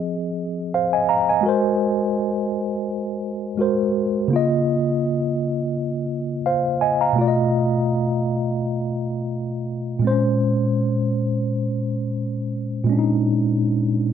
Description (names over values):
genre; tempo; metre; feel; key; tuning
R&B; 84 BPM; 4/4; swing 54% on 16ths; Bb minor; A4 = 440 Hz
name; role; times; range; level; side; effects
mellow tine electric piano; solo; 0.0-14.1 s; Bb2 to Bb5; -19 LUFS; equal; medium stereo tremolo
room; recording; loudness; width
light reverb; none; -19 LUFS; side -8 dB against mid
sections
0.0-14.1 A section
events
none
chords
0.0 Fm7; 1.4 Ab9; 4.3 Db69; 7.2 B7#11; 10.0 Bbm9